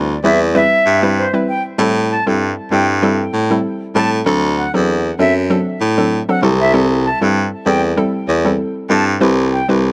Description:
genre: afrobeats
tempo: 97 BPM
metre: 4/4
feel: swing 55% on 16ths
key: A dorian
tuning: A4 = 440 Hz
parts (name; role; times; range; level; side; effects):
- breathy baritone saxophone; bass; 0.0-9.9 s; C2 to A2; -18 LUFS; equal; none
- reedy silver concert flute; melody; 0.2-9.7 s; C5 to A5; -21 LUFS; equal; digital delay
- hollow square pluck; accompaniment; 0.2-9.9 s; F#3 to B4; -20 LUFS; equal; chorus
room: small room ambience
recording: none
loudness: -15 LUFS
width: mono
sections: 0.0-9.9 A section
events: none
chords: 0.0 Cmaj7; 1.8 Am7; 4.3 D7; 6.4 Am7/C; 9.2 Cmaj7

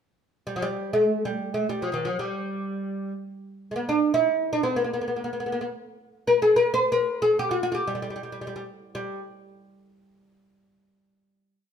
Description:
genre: Arabic maqam ensemble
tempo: free time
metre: none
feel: none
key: G maqam huzam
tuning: A4 = 440 Hz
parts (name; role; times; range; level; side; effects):
- oud; solo; 0.5-9.2 s; E3-50c to C5-40c; -23 LUFS; equal; none
room: moderate large studio reverb, RT60 1.2 s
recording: band playing live in one room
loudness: -23 LUFS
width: side -7 dB against mid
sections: 0.1-8.9 free-time section; 8.9-11.1 final note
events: none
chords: none

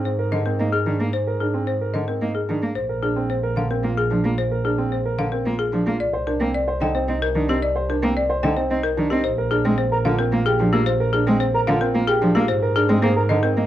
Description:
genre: classical, minimalist pattern music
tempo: 111 BPM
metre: 3/4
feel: straight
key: Bb mixolydian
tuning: A4 = 440 Hz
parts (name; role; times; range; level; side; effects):
- clear baby grand piano; arpeggios; 0.0-13.7 s; C4 to C5; -25 LUFS; right 4 dB; none
- warm double bass; bass; 0.0-13.7 s; Bb1 to Ab2; -25 LUFS; right 2 dB; none
- folk marimba with hard mallets; melody; 0.1-13.6 s; G4 to G5; -24 LUFS; left 4 dB; none
- rich cello; accompaniment; 0.3-13.7 s; D3 to C4; -23 LUFS; equal; none
- concert flute; arpeggios; 9.9-13.2 s; Bb5; -25 LUFS; right 1 dB; none
room: light reverb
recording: worn, warbling old tape, cassette tape, warbly pitch drift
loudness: -18 LUFS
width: side -12 dB against mid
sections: 0.0-13.7 A section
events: none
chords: 0.0 Abadd9; 2.8 Bb9; 6.0 Cm7; 9.2 Bb9; 12.5 Abadd9

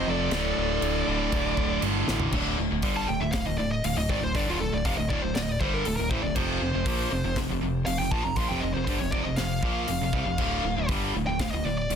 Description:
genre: heavy metal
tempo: 119 BPM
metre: 4/4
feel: straight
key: D phrygian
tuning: A4 = 440 Hz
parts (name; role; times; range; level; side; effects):
- high-gain lead guitar; melody; 0.0-12.0 s; F4 to C6; -31 LUFS; left 1 dB; distortion
- dark smooth lead guitar; second line; 0.0-1.8 s; A4; -35 LUFS; right 7 dB; overdrive
- distorted electric guitar; riff; 0.0-12.0 s; D2 to Bb3; -31 LUFS; right 11 dB; overdrive
- thick fuzz guitar; riff; 0.0-2.3 s; D2 to F3; -32 LUFS; right 1 dB; distortion
- tight distorted guitar; riff; 0.0-12.0 s; D2 to Bb3; -32 LUFS; left 13 dB; distortion
- fat analog bass; bass; 0.0-12.0 s; D1 to C2; -32 LUFS; equal; none
- modern studio drum kit; drums; 0.3-12.0 s; crash cymbal, hi-hat, kick drum, snare drum, toms; -32 LUFS; equal; none
room: studio reverb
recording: dense, heavily limited modern master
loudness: -24 LUFS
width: side -8 dB against mid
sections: 0.0-2.3 A section; 2.3-12.0 B section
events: half time 0.0-2.3; drum fill 2.1; lead electric guitar solo 2.3-12.0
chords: 0.3 D5; 6.4 F5; 10.4 Dm

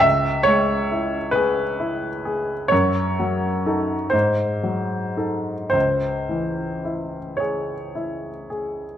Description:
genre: classical, romantic nocturne for solo piano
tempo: 36-46 BPM (dotted quarters)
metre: 12/8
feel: rubato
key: C# minor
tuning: A4 = 442 Hz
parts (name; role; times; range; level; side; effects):
- warm baby grand piano; solo; 0.0-9.0 s; C#2 to E5; -20 LUFS; equal; none
room: moderate large studio reverb, RT60 1.3 s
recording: dark, warm production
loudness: -20 LUFS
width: side -10 dB against mid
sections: 0.0-9.0 A section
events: none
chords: 0.0 C#m; 2.7 D#dim/F#; 4.1 G#7b9; 5.7 C#m

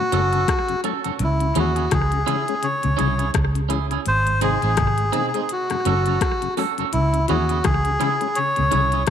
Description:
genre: roots reggae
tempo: 84 BPM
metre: 4/4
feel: swing 58% on 16ths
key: C# harmonic minor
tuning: A4 = 440 Hz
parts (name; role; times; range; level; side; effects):
- melodica; melody; 0.0-9.0 s; E4 to C#5; -22 LUFS; left 1 dB; tape echo
- mellow tonewheel organ; accompaniment; 0.0-9.0 s; F#2 to C#4; -30 LUFS; left 10 dB; chorus vibrato, slow rotary speaker
- clean electric guitar; arpeggios; 0.0-8.9 s; G#2 to E3; -30 LUFS; left 8 dB; lush chorus
- clean electric guitar; accompaniment; 0.1-9.0 s; B#3 to A4; -28 LUFS; right 12 dB; tape echo
- vintage muted fingered electric bass; bass; 0.1-9.0 s; F#1 to D#2; -22 LUFS; right 1 dB; none
- minimal click drum kit; drums; 0.1-9.1 s; hi-hat, kick drum, rim click; -25 LUFS; left 2 dB; overdrive, slapback echo
room: light reverb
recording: 1960s-style stereo with parts hard left and right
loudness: -18 LUFS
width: side -9 dB against mid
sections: 0.0-9.1 A section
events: none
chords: 0.0 F#m; 1.2 C#m; 4.1 G#; 5.5 F#m; 6.9 C#m

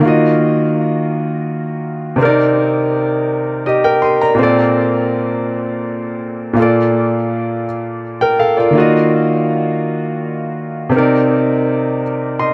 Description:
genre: R&B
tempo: 55 BPM (dotted quarters)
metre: 6/8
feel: straight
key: Bb major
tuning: A4 = 437 Hz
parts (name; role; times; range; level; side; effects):
- clear grand piano; solo; 0.0-12.5 s; Bb2 to C6; -16 LUFS; equal; dub echo
room: light reverb, studio reverb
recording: echo-heavy mix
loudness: -16 LUFS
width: mono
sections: 0.0-12.5 A section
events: none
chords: 0.0 Ebmadd9; 2.2 Cm7; 4.4 Bbmaj9; 6.6 Bbmaj7; 8.8 Ebmadd9; 10.9 Cm7

